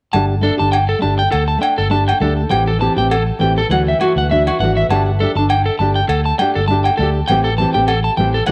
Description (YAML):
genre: highlife guitar band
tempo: 101 BPM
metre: 4/4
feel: swing 55% on 16ths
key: unclear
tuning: A4 = 440 Hz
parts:
  - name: nylon-string guitar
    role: accompaniment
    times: 0.1-8.5 s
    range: E3 to G4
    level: -22 LUFS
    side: equal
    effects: none
  - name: electric guitar at the edge of break-up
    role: arpeggios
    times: 0.1-8.5 s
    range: F#4 to A5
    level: -20 LUFS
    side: equal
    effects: tape echo
  - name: fingered electric bass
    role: bass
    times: 0.1-8.5 s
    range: G1 to D2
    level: -20 LUFS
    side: equal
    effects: none
  - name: agogo bells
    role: percussion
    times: 0.1-8.5 s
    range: none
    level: -26 LUFS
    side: equal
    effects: none
room: moderate plate reverb, RT60 2.6 s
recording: none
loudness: -16 LUFS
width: mono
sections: 0.1-8.5 A section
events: none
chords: 0.1 Gsus2; 2.5 Am7; 3.7 Dadd9; 4.9 Gsus2; 7.3 Am7